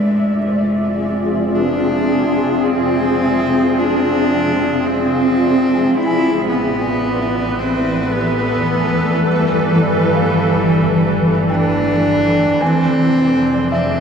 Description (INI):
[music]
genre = ambient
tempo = 55 BPM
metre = 3/4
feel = straight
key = unclear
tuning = A4 = 440 Hz
[part]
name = warm cello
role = melody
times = 0.0-14.0 s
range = G3 to E4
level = -17 LUFS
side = equal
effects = diffuse ambient delay
[part]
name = granular cloud pad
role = sustained chords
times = 0.0-14.0 s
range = E3 to E5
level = -16 LUFS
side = equal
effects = built-in reverb
[part]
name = felt-muted upright piano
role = arpeggios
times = 0.0-14.0 s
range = G4 to Ab5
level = -30 LUFS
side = equal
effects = diffuse ambient delay
[part]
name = dark chamber double bass section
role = bass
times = 0.0-14.0 s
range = F1 to A1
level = -29 LUFS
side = equal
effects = none
[sound]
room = wet cathedral reverb, RT60 5.6 s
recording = in a vast, echoing space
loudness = -13 LUFS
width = side -6 dB against mid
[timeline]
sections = 0.0-14.0 A section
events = fade-in on felt piano 0.0-14.0; fade-in on double bass section 0.0-14.0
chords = 0.0 Fm6; 6.0 A9sus4; 9.3 G9; 12.6 Fm6